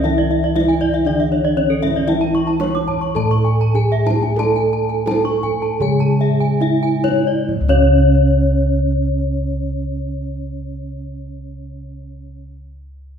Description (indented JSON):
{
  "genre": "Balinese gamelan",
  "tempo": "65-118 BPM",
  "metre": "4/4",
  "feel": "straight",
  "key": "C# pelog",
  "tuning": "A4 = 438 Hz",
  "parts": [
    { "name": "gamelan-type bronze metallophone", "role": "melody", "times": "0.0-12.4 s", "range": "C#4 to C#5", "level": "-20 LUFS", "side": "right 2 dB", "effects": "none" },
    { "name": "gamelan-type bronze metallophone", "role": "accompaniment", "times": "0.0-12.4 s", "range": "C#3 to A3", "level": "-24 LUFS", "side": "right 1 dB", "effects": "none" },
    { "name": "gamelan-type bronze metallophone", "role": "arpeggios", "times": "0.0-12.4 s", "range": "C#5 to C#6", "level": "-22 LUFS", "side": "left 7 dB", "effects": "none" },
    { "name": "gamelan-type bossed gongs", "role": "bass", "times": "0.0-12.3 s", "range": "C#2 to A4", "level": "-20 LUFS", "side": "equal", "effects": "none" },
    { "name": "kendang", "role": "percussion", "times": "0.1-7.9 s", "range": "none", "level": "-27 LUFS", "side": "right 2 dB", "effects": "none" },
    { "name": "gamelan-type bronze metallophone", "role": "arpeggios", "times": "0.2-12.4 s", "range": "A4 to D6+35c", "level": "-26 LUFS", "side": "right 6 dB", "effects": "none" }
  ],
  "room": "wet scoring stage reverb, RT60 1.7 s",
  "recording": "minimal, uncompressed stereo recording",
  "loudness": "-15 LUFS",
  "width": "side -7 dB against mid",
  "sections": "0.0-7.5 A section; 7.5-13.2 B section",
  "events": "slowing down 2.1-7.5",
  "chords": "none"
}